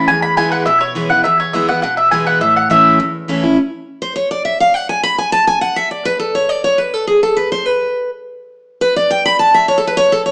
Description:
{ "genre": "bluegrass", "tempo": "206 BPM", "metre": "4/4", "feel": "straight", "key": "A major", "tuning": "A4 = 440 Hz", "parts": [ { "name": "mandolin", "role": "melody", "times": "0.0-3.0 s", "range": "C#5 to B5", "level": "-14 LUFS", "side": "equal", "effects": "none" }, { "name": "picked steel-string acoustic guitar", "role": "accompaniment", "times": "0.0-10.3 s", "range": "E2 to B5", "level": "-16 LUFS", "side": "equal", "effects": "none" } ], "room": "moderate large studio reverb, RT60 1.1 s", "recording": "band playing live in one room, small speaker sound", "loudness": "-14 LUFS", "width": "mono", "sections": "0.0-3.6 A section; 3.6-10.3 B section", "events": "steel-string acoustic guitar solo 3.6-10.3", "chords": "0.1 E; 2.4 A; 3.6 N.C.", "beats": "| 0.08 0.37 0.67 0.96 | 1.25 1.54 1.83 2.12 | 2.41 2.70 2.99 3.29 | 3.58 3.87 4.16 4.45 | 4.74 5.03 5.32 5.61 | 5.90 6.20 6.49 6.78 | 7.07 7.36 7.65 7.94 | 8.23 8.52 8.81 9.10 | 9.39 9.68 9.97 10.27" }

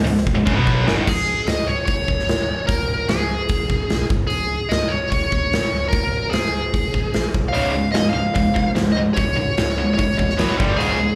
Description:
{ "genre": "hard rock", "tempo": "148 BPM", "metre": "4/4", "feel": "straight", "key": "Db mixolydian", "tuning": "A4 = 441 Hz", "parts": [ { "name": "tight distorted guitar", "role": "riff", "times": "0.0-1.1, 7.5-11.2 s", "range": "Db2 to Cb4", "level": "-22 LUFS", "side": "equal", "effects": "distortion, slapback echo" }, { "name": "hollow-body short-scale picked electric bass", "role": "bass", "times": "0.0-11.1 s", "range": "Db1 to Cb2", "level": "-27 LUFS", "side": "equal", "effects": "none" }, { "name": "big rock drum kit", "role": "drums", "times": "0.1-10.9 s", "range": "crash cymbal, hi-hat, kick drum, snare drum", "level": "-25 LUFS", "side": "equal", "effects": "none" }, { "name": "smooth overdriven lead guitar", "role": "melody", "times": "1.1-11.2 s", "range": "Ab4 to F5", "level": "-25 LUFS", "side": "equal", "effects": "slapback echo" } ], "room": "light reverb", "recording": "live gig heard through the venue's PA, club reverb", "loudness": "-20 LUFS", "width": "mono", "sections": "0.0-1.1 A section; 1.1-11.2 B section", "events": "drum fill 0.3-1.1", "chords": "0.0 Db5; 3.9 Abm/Cb; 4.1 N.C.; 4.3 Db5; 7.3 N.C.; 7.5 Db; 10.4 Cb5; 10.6 G5", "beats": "0.26 0.66 | 1.06 1.47 1.87 2.28 | 2.68 3.09 3.49 3.90 | 4.30 4.71 5.11 5.52 | 5.92 6.33 6.73 7.14 | 7.54 7.95 8.36 8.76 | 9.17 9.57 9.98 10.38 | 10.79" }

